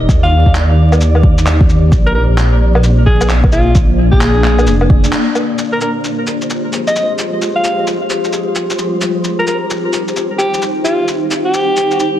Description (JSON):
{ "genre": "future garage", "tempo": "131 BPM", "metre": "4/4", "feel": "swing 63% on 16ths", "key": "F dorian", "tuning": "A4 = 441 Hz", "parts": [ { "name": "granular cloud pad", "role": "sustained chords", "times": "0.0-12.2 s", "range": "Bb3 to D5", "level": "-18 LUFS", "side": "left 1 dB", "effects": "built-in reverb, sidechain pumping" }, { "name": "dark detuned saw bass", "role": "bass", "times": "0.0-5.1 s", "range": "F1 to Eb2", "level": "-11 LUFS", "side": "equal", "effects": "sidechain pumping" }, { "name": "flickering grainy texture", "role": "texture", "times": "0.0-12.2 s", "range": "C5 to D5", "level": "-27 LUFS", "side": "right 1 dB", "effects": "built-in reverb" }, { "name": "electronic kick drum", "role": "drums", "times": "0.1-5.0 s", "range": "none", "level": "-11 LUFS", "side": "equal", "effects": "overdrive" }, { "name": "electronic shaker, handclaps, woodblock and cabasa", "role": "drums", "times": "0.1-12.1 s", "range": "none", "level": "-20 LUFS", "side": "equal", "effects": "soft clipping on snare" }, { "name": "breathy alto saxophone", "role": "melody", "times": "0.2-12.1 s", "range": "F4 to F5", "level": "-18 LUFS", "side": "equal", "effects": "tape echo" } ], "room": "moderate lush hall reverb, RT60 1.9 s", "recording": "dense, heavily limited modern master, vinyl crackle", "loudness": "-10 LUFS", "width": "side -12 dB against mid", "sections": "0.0-5.6 A section; 5.6-12.2 B section", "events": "break 5.1-5.6; band accent 5.1", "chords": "0.0 Eb; 1.9 Bbadd9; 5.6 Fmadd9; 9.2 Cm" }